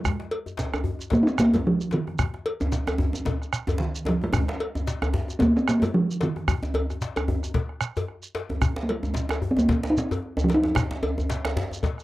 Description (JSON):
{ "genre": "west african traditional, West African drum ensemble", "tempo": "112 BPM", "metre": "4/4", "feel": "swing 57% on 16ths", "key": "Ab major pentatonic", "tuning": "A4 = 440 Hz", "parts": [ { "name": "talking drum", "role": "melody", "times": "0.0-11.6 s", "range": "Eb3 to Eb4", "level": "-22 LUFS", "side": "right 1 dB", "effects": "none" }, { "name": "djembe", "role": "percussion", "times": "0.0-12.0 s", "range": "none", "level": "-32 LUFS", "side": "left 2 dB", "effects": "none" }, { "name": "shekere", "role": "percussion", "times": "0.0-12.0 s", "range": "none", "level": "-34 LUFS", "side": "right 1 dB", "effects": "none" }, { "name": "bombo", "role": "percussion", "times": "0.1-12.0 s", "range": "none", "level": "-27 LUFS", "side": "equal", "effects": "none" }, { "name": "cowbell", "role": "percussion", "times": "0.3-12.0 s", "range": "none", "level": "-32 LUFS", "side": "left 2 dB", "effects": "none" }, { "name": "djembe", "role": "percussion", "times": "0.6-11.7 s", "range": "none", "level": "-28 LUFS", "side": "equal", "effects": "none" } ], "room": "moderate booth ambience, RT60 0.2 s", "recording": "dry, close 1970s-style studio recording", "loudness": "-23 LUFS", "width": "side -16 dB against mid", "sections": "0.0-12.0 A section", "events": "none", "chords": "none", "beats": "| 0.05 0.58 1.12 1.65 | 2.19 2.73 3.26 3.80 | 4.33 4.87 5.40 5.94 | 6.47 7.01 7.55 8.08 | 8.62 9.15 9.69 10.22 | 10.76 11.29 11.83" }